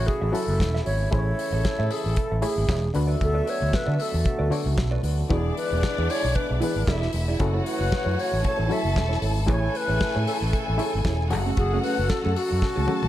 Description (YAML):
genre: disco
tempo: 115 BPM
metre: 4/4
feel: swing 56% on 16ths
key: F# minor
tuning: A4 = 438 Hz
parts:
  - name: breathy alto flute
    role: melody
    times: 0.0-13.1 s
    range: F#4 to E5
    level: -29 LUFS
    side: equal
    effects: none
  - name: warm French horn section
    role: sustained chords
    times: 0.0-13.1 s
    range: C#3 to F#4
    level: -35 LUFS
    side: right 2 dB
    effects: none
  - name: warm horn section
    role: stabs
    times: 0.0-13.1 s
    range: C#3 to E5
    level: -34 LUFS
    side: left 6 dB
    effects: none
  - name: overdriven fingered electric bass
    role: bass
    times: 0.0-13.1 s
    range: E1 to D3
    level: -25 LUFS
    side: equal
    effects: none
  - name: mellow electric guitar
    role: accompaniment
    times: 0.1-13.1 s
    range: A3 to E5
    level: -33 LUFS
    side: right 6 dB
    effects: none
  - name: damped 70s drum kit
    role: drums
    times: 0.1-13.1 s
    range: hi-hat, kick drum, snare drum, toms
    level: -28 LUFS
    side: equal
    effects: none
  - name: muted clav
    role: accompaniment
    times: 0.3-13.1 s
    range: D3 to C#5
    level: -32 LUFS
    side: left 4 dB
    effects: none
  - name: clear studio string section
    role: second line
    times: 5.3-13.1 s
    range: D4 to A5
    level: -31 LUFS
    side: left 2 dB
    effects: none
room: little or no reverb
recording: dark, warm production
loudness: -22 LUFS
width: side -13 dB against mid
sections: 0.0-13.1 A section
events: drum fill 12.6-13.1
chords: 0.0 F#m7; 1.1 Amaj7; 3.0 D6; 5.3 E7; 7.4 F#m7; 9.5 Amaj7; 11.3 F#madd9